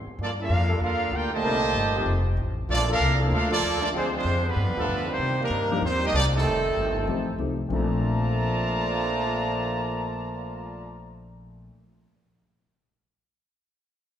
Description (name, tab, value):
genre	jazz, big band swing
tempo	191 BPM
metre	4/4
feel	swing 64% on 8ths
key	Bb major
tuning	A4 = 440 Hz
part	upright bass	bass	0.0-11.7 s	F1 to D3	-28 LUFS	equal	none
part	clear trumpet section	melody	0.2-11.0 s	G3 to Bb5	-27 LUFS	equal	none
part	clear trombone section	second line	0.2-11.0 s	Bb2 to A4	-29 LUFS	right 2 dB	none
part	warm trombone section	sustained chords	0.7-4.8 s	F3 to Bb4	-34 LUFS	left 2 dB	none
part	dark concert grand piano	accompaniment	5.7-11.7 s	Bb2 to G4	-30 LUFS	left 4 dB	none
room	wet recital hall reverb, RT60 1.7 s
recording	recorded in a church or concert hall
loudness	-22 LUFS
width	side -10 dB against mid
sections	0.0-5.2 A section; 5.2-7.7 B section; 7.7-10.2 C section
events	none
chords	0.2 Gm9; 1.4 Cm7; 2.1 F7; 2.7 Bbmaj7; 3.9 Dm7b5; 4.6 G7; 5.2 Cm9; 6.5 F7; 7.7 Bbmaj7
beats	| 0.19 0.50 0.81 1.12 | 1.44 1.75 2.06 2.37 | 2.69 3.00 3.31 3.63 | 3.94 4.25 4.57 4.88 | 5.20 5.51 5.82 6.14 | 6.45 6.77 7.08 7.40 | 7.71 8.03 8.34 8.66 | 8.97 9.29 9.60 9.92